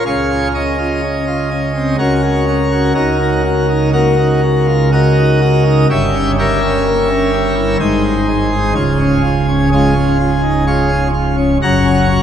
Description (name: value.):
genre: classical, chorale-style piece for pipe organ.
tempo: 62 BPM.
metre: 3/4.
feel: rubato.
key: Db major.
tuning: A4 = 441 Hz.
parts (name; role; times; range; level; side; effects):
pipe organ, plenum; solo; 0.0-12.2 s; Db1 to Bb5; -11 LUFS; equal; none.
room: wet cathedral reverb, RT60 4.8 s.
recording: none.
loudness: -11 LUFS.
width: side -9 dB against mid.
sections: 0.1-12.2 A section.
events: none.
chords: 0.1 Db; 2.0 Gb/Db; 3.0 Ebm/Db; 5.9 Gdim7; 7.8 Ab; 8.8 Db; 11.6 Gb.